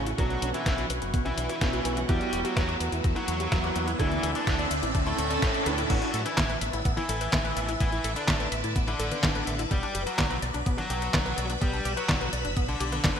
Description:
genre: italo disco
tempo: 126 BPM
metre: 4/4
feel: straight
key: unclear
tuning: A4 = 438 Hz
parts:
  - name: smooth overdriven lead guitar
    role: melody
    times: 0.0-13.2 s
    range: A2 to G4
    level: -31 LUFS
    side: equal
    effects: digital delay
  - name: phased string machine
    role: sustained chords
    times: 0.0-13.2 s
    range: A4 to E6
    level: -36 LUFS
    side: equal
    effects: ensemble chorus, phaser
  - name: analog pluck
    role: arpeggios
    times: 0.0-13.2 s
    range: B3 to E5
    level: -36 LUFS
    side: left 1 dB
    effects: chorus, ping-pong delay
  - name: warm grand piano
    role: stabs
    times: 0.0-5.9 s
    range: A2 to B4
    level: -34 LUFS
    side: right 3 dB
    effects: wide subtle chorus, low-pass filter
  - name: fingered electric bass with an envelope filter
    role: bass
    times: 0.0-13.1 s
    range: E1 to A2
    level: -33 LUFS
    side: equal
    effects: none
  - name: riser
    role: sound effects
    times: 1.1-5.9 s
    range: none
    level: -36 LUFS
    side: right 1 dB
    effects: none
  - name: detuned 8-bit digital drum machine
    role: drums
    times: 0.1-13.2 s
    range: crash cymbal, handclaps, hi-hat, snare drum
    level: -31 LUFS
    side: equal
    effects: high-pass filter on hats, high-pass filter on snare, high-pass filter on cymbals, high-pass filter on room, gated reverb
  - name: electronic kick drum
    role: drums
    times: 0.2-13.1 s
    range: none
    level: -29 LUFS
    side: equal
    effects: none
room: moderate lush hall reverb, RT60 2.0 s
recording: bright 1980s-style digital production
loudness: -25 LUFS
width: side -8 dB against mid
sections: 0.0-5.9 A section; 5.9-13.2 B section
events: filter sweep on synth arpeggio sound 0.0-5.9; filter sweep on grand piano 0.0-5.9; filter sweep on string machine 0.0-5.9; riser 1.1-5.9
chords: 0.2 Bmadd9; 2.1 Emadd9; 4.0 Dsus2; 9.7 G

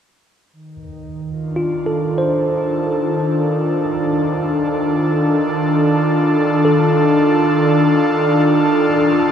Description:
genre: ambient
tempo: free time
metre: none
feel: none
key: unclear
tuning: A4 = 440 Hz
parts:
  - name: airy breathy pad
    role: sustained chords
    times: 0.5-9.3 s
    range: Eb3 to A4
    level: -16 LUFS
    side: left 1 dB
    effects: chorus
  - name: organ-like drone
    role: drone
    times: 1.1-9.3 s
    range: Eb3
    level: -23 LUFS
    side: right 1 dB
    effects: ensemble chorus, built-in reverb
  - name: tine electric piano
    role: arpeggios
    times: 1.6-9.3 s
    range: F4 to C5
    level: -22 LUFS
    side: right 2 dB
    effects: tape echo
room: wet cathedral reverb, RT60 6.3 s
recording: in a vast, echoing space, cassette tape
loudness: -14 LUFS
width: side -8 dB against mid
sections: 0.6-9.3 A section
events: none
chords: 0.6 Dm/Eb

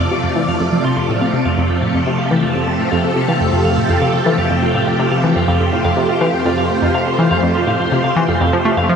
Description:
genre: ambient, sequencer-driven space music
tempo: 123 BPM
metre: 4/4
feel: straight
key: F major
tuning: A4 = 441 Hz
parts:
  - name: phased string machine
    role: sustained chords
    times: 0.0-9.0 s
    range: C3 to D5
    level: -17 LUFS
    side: equal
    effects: ensemble chorus, phaser, shimmer reverb
  - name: analog pluck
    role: riff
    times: 0.0-8.9 s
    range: F2 to C4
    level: -17 LUFS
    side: equal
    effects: chorus, tape echo
  - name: clean electric guitar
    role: arpeggios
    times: 0.1-8.9 s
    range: F4 to C6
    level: -22 LUFS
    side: right 2 dB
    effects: auto-pan, tape echo, shimmer reverb
room: wet huge ambient reverb, RT60 8.6 s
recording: none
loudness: -13 LUFS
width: side -6 dB against mid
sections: 0.0-9.0 A section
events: fade-in on clean electric guitar 0.0-9.0; filter sweep on synth arpeggio sound 0.0-9.0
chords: 0.0 F

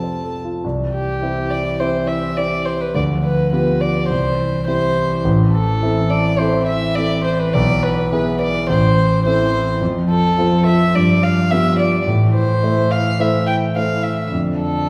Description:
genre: quick classical-period movement for piano trio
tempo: 105 BPM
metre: 4/4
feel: rubato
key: C major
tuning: A4 = 439 Hz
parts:
  - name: dark violin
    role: melody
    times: 0.0-14.9 s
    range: G4 to A5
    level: -22 LUFS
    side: equal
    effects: none
  - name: warm concert grand piano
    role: accompaniment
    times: 0.0-14.9 s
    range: A1 to C5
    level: -21 LUFS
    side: equal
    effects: none
  - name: dark cello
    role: second line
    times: 0.6-14.9 s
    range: D3 to F3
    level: -24 LUFS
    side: equal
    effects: none
room: wet recital hall reverb, RT60 1.4 s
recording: heard from further back in the room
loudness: -17 LUFS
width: mono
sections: 0.6-14.9 A section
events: none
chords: 0.0 F; 0.6 C; 2.9 G7/D; 4.1 C; 5.2 Am; 7.5 E/B; 8.7 Am; 9.8 F; 10.9 G7; 12.1 Am; 14.3 Dm/F

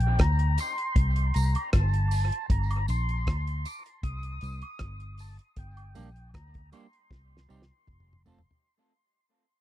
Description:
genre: dub reggae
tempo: 78 BPM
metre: 4/4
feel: straight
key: G minor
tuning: A4 = 441 Hz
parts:
  - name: tonewheel organ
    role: melody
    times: 0.0-8.2 s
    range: G5 to Eb6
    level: -34 LUFS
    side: equal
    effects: overdrive, slow rotary speaker, dub echo
  - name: vintage muted fingered electric bass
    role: bass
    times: 0.0-8.4 s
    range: F1 to D2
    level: -27 LUFS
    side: equal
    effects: none
  - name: damped 70s drum kit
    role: drums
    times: 0.0-8.7 s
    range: hi-hat, kick drum, rim click, snare drum, toms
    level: -27 LUFS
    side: equal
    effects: none
  - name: tambourine and woodblock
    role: percussion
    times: 0.6-8.4 s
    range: none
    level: -42 LUFS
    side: right 7 dB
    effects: dub echo
  - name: semi-hollow electric guitar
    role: accompaniment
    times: 5.9-8.4 s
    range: G3 to A4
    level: -48 LUFS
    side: equal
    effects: dub echo
room: little or no reverb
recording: dry, close 1970s-style studio recording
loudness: -25 LUFS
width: side -14 dB against mid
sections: 0.0-8.6 A section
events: break 0.0-5.6; fade-out 0.0-8.6; drum fill 7.1-8.6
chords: 0.0 Gm; 1.0 C5; 2.5 Gm; 4.0 Cm; 5.6 Gm; 7.1 Cm; 7.9 F

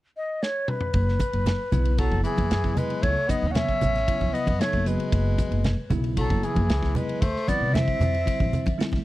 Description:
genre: electric jazz fusion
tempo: 115 BPM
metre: 4/4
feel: straight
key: unclear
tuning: A4 = 440 Hz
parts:
  - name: mellow silver concert flute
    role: melody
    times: 0.2-8.8 s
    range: G#4 to F#5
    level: -28 LUFS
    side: equal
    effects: none
  - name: modern studio drum kit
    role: drums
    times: 0.4-9.0 s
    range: hi-hat, kick drum, ride cymbal, snare drum, toms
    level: -27 LUFS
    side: equal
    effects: none
  - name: upright bass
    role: bass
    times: 0.9-9.0 s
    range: F#1 to D3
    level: -26 LUFS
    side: equal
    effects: none
  - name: congas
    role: percussion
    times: 1.2-9.0 s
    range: none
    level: -29 LUFS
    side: right 1 dB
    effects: none
  - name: bell-like tine electric piano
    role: accompaniment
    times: 1.7-9.0 s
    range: C#3 to F#4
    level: -31 LUFS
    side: equal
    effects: medium stereo tremolo
  - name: clear tenor saxophone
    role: second line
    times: 2.0-8.8 s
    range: E3 to D#4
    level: -33 LUFS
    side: left 5 dB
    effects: none
room: studio ambience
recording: dry, close 1970s-style studio recording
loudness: -22 LUFS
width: side -16 dB against mid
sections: 0.9-9.0 A section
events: drum fill 0.4-0.9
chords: 0.0 N.C.; 0.9 F#9sus4; 7.2 Dm11

